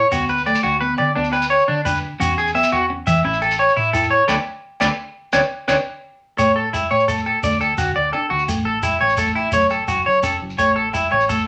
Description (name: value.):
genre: highlife guitar band.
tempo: 115 BPM (dotted quarters).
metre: 12/8.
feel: straight.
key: A major.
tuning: A4 = 440 Hz.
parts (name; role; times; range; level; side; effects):
electric guitar at the edge of break-up; accompaniment; 0.0-11.5 s; G#3 to E4; -29 LUFS; equal; none.
electric guitar at the edge of break-up; arpeggios; 0.0-11.4 s; D4 to E5; -19 LUFS; equal; none.
deep dub fingered electric bass; bass; 0.0-11.5 s; F#1 to E3; -30 LUFS; equal; none.
agogo bells; percussion; 0.1-11.3 s; none; -31 LUFS; equal; none.
shekere; percussion; 0.1-11.4 s; none; -31 LUFS; equal; none.
room: wet studio reverb, RT60 0.5 s.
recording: none.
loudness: -19 LUFS.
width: mono.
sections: 0.0-6.4 A section; 6.4-11.5 B section.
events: band accent 4.3-6.4.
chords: 0.1 D6; 1.2 Bmadd9/D; 2.2 Esus2; 3.2 A; 4.3 D5; 5.3 Bmadd9/D; 6.4 A; 7.4 D; 8.5 A5; 9.5 F#m; 10.6 A.